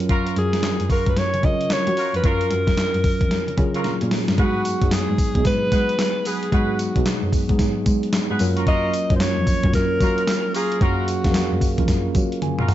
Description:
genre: R&B, new jack swing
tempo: 112 BPM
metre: 4/4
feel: swing 63% on 16ths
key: G# dorian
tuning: A4 = 439 Hz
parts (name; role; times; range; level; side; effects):
- mellow tine electric piano; accompaniment; 0.0-12.7 s; F#3 to G#5; -25 LUFS; right 1 dB; medium stereo tremolo
- warm cello; bass; 0.0-12.7 s; E#2 to G#3; -24 LUFS; equal; none
- clean 12-bit digital drum machine; drums; 0.0-12.7 s; handclaps, hi-hat, kick drum, snare drum, tambourine, toms; -22 LUFS; equal; none
- warm horn section; stabs; 0.1-12.7 s; E#4 to B4; -30 LUFS; equal; none
- breathy alto saxophone; melody; 0.4-11.9 s; F#4 to D#5; -24 LUFS; equal; none
room: little or no reverb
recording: dark, warm production, nothing above 7.8 kHz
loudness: -18 LUFS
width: side -13 dB against mid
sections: 0.0-4.4 A section; 4.4-12.7 B section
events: drum fill 3.8-4.4, 12.4-12.7; tine electric piano fill 12.1-12.7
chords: 0.0 F#maj7; 4.4 G#m7; 8.4 F#maj7

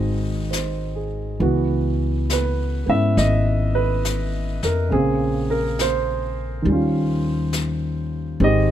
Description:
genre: jazz ballad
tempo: 68 BPM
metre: 4/4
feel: swing 66% on 8ths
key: unclear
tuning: A4 = 440 Hz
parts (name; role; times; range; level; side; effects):
- warm grand piano; accompaniment; 0.0-8.7 s; Db3 to Fb5; -22 LUFS; right 2 dB; none
- upright bass; bass; 0.0-8.7 s; Ab1 to Ab2; -22 LUFS; left 2 dB; none
- jazz brush drum kit; drums; 0.5-8.7 s; brushed snare drum, hi-hat, snare drum; -31 LUFS; left 4 dB; none
room: little or no reverb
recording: close, detailed microphones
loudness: -19 LUFS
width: side -11 dB against mid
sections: 0.0-8.7 A section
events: none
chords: 0.0 Ab7; 1.4 Dbm7; 4.9 Bbm9; 6.7 Eb9

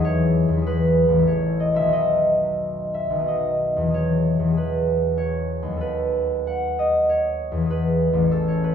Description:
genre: classical, solo harp piece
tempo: 88-100 BPM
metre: 3/4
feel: rubato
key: E major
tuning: A4 = 439 Hz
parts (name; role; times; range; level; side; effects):
- concert harp; solo; 0.0-8.7 s; A1 to F#5; -19 LUFS; equal; none
room: wet recital hall reverb, RT60 1.7 s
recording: minimal, uncompressed stereo recording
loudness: -19 LUFS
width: side -8 dB against mid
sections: 0.0-8.7 A section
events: none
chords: 0.1 E; 1.3 A; 1.9 B; 3.9 E; 5.8 B7/D#; 7.7 E

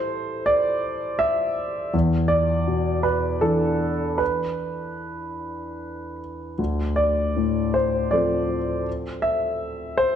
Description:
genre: neoclassical minimalist piano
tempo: 78 BPM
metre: 3/4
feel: uneven beats, rubato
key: unclear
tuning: A4 = 440 Hz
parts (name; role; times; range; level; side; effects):
- warm grand piano; solo; 0.0-10.2 s; D2 to E5; -21 LUFS; equal; none
room: moderate recital hall reverb, RT60 1.6 s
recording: dark, warm production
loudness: -21 LUFS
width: side -9 dB against mid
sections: 0.0-10.2 A section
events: none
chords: 0.0 Am7; 1.9 E7sus4; 6.6 Dm7

